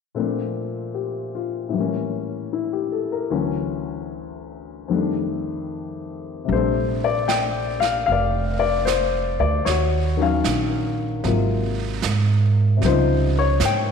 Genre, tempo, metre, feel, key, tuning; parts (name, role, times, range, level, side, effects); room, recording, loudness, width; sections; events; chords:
jazz ballad; 76 BPM; 4/4; swing 67% on 8ths; Bb major; A4 = 440 Hz
warm baby grand piano; accompaniment; 0.1-13.9 s; D2 to G5; -22 LUFS; left 7 dB
upright bass; bass; 6.5-13.9 s; F1 to Ab2; -22 LUFS; right 3 dB
jazz brush drum kit; drums; 6.5-13.9 s; brushed snare drum, hi-hat, snare drum; -30 LUFS; right 9 dB
moderate echo chamber reverb, RT60 1.8 s; 1960s-style stereo with parts hard left and right; -20 LUFS; side -6 dB against mid
0.2-6.5 A section; 6.5-13.9 B section
0.2 Bbmaj9; 1.7 A7b9; 3.3 Dmaj9; 4.9 F13; 6.5 Bbmaj13; 9.7 Ebm9; 11.2 Ab13; 12.8 Dbmaj9#11